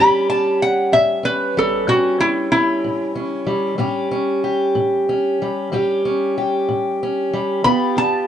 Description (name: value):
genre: acoustic country blues, solo or duo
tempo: 63 BPM (dotted quarters)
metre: 12/8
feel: straight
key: unclear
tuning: A4 = 441 Hz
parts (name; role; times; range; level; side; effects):
- lap resonator guitar; melody; 0.0-8.3 s; E4 to B5; -17 LUFS; equal; none
- fingerpicked steel-string acoustic guitar; accompaniment; 0.0-8.3 s; G2 to G4; -18 LUFS; equal; none
room: wet booth ambience, RT60 0.2 s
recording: heard from further back in the room, nothing above 11.0 kHz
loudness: -16 LUFS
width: side -9 dB against mid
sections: 0.0-8.3 A section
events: none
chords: 0.0 A7; 7.6 G7